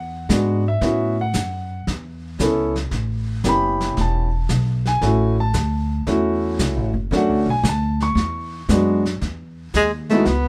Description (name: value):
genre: jazz, small-group swing and bop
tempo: 114 BPM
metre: 4/4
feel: swing 69% on 8ths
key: A major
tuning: A4 = 440 Hz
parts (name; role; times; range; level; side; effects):
- dark concert grand piano; accompaniment; 0.0-10.3 s; G#3 to C#6; -23 LUFS; equal; none
- upright bass; bass; 0.0-10.5 s; E1 to A2; -24 LUFS; equal; none
- vintage brush drum kit; drums; 0.3-10.5 s; brushed snare drum, hi-hat, snare drum; -30 LUFS; equal; none
- clear tenor saxophone; melody; 9.8-10.5 s; G#3 to B3; -21 LUFS; equal; none
room: light reverb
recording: none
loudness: -20 LUFS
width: mono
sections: 0.0-9.2 A section; 9.2-10.5 B section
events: none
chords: 0.0 E7; 0.8 A6; 2.9 A7; 5.0 Dmaj9; 7.1 Bm7; 8.2 E7; 9.2 Emaj7(no3)